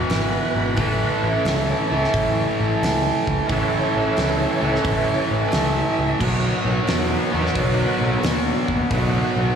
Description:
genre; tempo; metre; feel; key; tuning
blues rock power trio and southern rock; 88 BPM; 4/4; swing 67% on 8ths; unclear; A4 = 435 Hz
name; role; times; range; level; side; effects
bright tonewheel organ; sustained chords; 0.0-9.6 s; D#3 to E5; -26 LUFS; right 2 dB; overdrive, chorus vibrato, fast rotary speaker
overdriven electric guitar; riff; 0.0-9.6 s; E2 to B3; -21 LUFS; equal; none
growling fingered electric bass; bass; 0.1-9.5 s; G#1 to E2; -24 LUFS; equal; overdrive
huge arena drum kit; drums; 0.1-9.1 s; crash cymbal, hi-hat, kick drum, snare drum; -26 LUFS; equal; none
room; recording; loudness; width
wet lush hall reverb, RT60 2.9 s; big arena sound, small room ambience; -18 LUFS; side -7 dB against mid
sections
0.0-9.6 A section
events
tonewheel organ solo 0.0-9.6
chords
0.0 E; 0.8 A; 6.2 B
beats
0.10 | 0.77 1.45 2.13 2.81 | 3.49 4.17 4.85 5.52 | 6.20 6.88 7.55 8.23 | 8.91

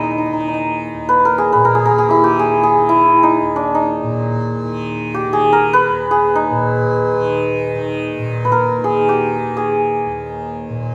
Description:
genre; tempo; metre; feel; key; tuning
indian classical, Hindustani; free time; none; none; unclear; A4 = 439 Hz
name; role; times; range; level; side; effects
santur; melody; 0.0-10.9 s; D4 to Cb5; -16 LUFS; equal; none
tanpura; drone; 0.0-10.9 s; Eb2 to Eb3; -25 LUFS; equal; none
room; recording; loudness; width
wet recital hall reverb, RT60 1.5 s; recorded in a church or concert hall; -16 LUFS; mono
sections
0.0-8.2 A section; 8.2-10.9 A section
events
none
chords
none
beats
free time

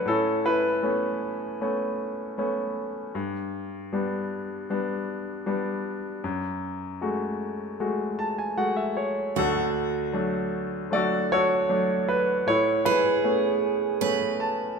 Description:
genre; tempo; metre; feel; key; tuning
folk; 78 BPM; 4/4; straight; A major; A4 = 440 Hz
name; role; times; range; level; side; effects
bright concert grand piano; melody; 0.0-14.8 s; D2 to A5; -24 LUFS; left 1 dB; none
picked steel-string acoustic guitar; arpeggios; 9.4-14.8 s; F#4 to B4; -28 LUFS; right 8 dB; none
room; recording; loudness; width
moderate recital hall reverb, RT60 1.7 s; minimal, uncompressed stereo recording; -24 LUFS; side -5 dB against mid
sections
0.0-14.8 A section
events
grand piano fill 7.8-9.4, 14.0-14.8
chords
0.1 Aadd9; 3.1 G; 6.2 F#madd9; 9.4 D; 12.5 Aadd9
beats
| 0.05 0.82 1.60 2.37 | 3.14 3.91 4.68 5.45 | 6.23 7.00 7.79 8.57 | 9.36 10.14 10.91 11.69 | 12.47 13.24 14.02 14.79

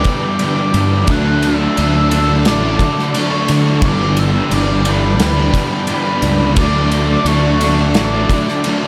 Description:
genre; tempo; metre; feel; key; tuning
rock, shoegaze and dream pop; 88 BPM; 4/4; straight; D major; A4 = 440 Hz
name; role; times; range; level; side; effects
mellow horn-like synth lead; melody; 0.0-8.9 s; B5 to F#6; -24 LUFS; equal; chorus
soft string machine; sustained chords; 0.0-8.9 s; D4 to G5; -28 LUFS; equal; none
direct-recorded clean electric guitar; arpeggios; 0.0-8.9 s; E3 to D4; -29 LUFS; equal; none
biting overdriven guitar; riff; 0.0-8.9 s; G2 to D4; -24 LUFS; equal; none
overdriven semi-hollow guitar; riff; 0.0-8.9 s; G2 to D4; -25 LUFS; equal; reverse reverb
thick fuzz guitar; riff; 0.0-8.9 s; G2 to D4; -23 LUFS; equal; none
loose indie drum kit; drums; 0.0-8.8 s; kick drum, ride cymbal, snare drum; -22 LUFS; equal; none
fuzz fingered electric bass; bass; 0.7-8.2 s; G1 to D3; -18 LUFS; equal; overdrive
room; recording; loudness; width
light reverb; none; -14 LUFS; mono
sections
0.0-8.9 A section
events
none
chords
0.0 G6; 1.1 Dmaj7; 3.8 G6; 6.6 Dmaj7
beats
0.41 | 1.10 1.78 2.47 3.15 | 3.83 4.52 5.21 5.89 | 6.58 7.27 7.96 8.65

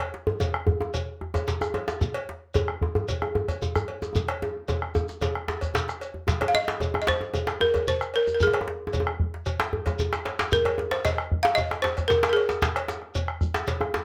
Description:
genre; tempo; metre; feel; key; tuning
west african traditional, West African drum ensemble; 113 BPM; 4/4; straight; Ab major pentatonic; A4 = 440 Hz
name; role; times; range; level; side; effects
bombo; percussion; 0.0-14.0 s; none; -32 LUFS; equal; none
cowbell; percussion; 0.0-13.8 s; none; -38 LUFS; equal; none
djembe; percussion; 0.1-14.0 s; none; -36 LUFS; equal; none
djembe; percussion; 0.3-14.0 s; none; -31 LUFS; equal; none
shekere; percussion; 0.4-13.8 s; none; -38 LUFS; equal; none
balafon; melody; 6.5-14.0 s; Ab4 to F5; -26 LUFS; equal; none
room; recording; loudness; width
moderate studio reverb, RT60 0.5 s; none; -26 LUFS; mono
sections
0.0-6.3 A section; 6.3-14.0 B section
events
drum fill 4.2-6.3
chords
none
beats
0.41 0.94 1.48 | 2.01 2.55 3.08 3.62 | 4.15 4.68 5.22 5.75 | 6.28 6.81 7.34 7.87 | 8.40 8.93 9.46 9.99 | 10.52 11.04 11.57 12.10 | 12.62 13.15 13.67

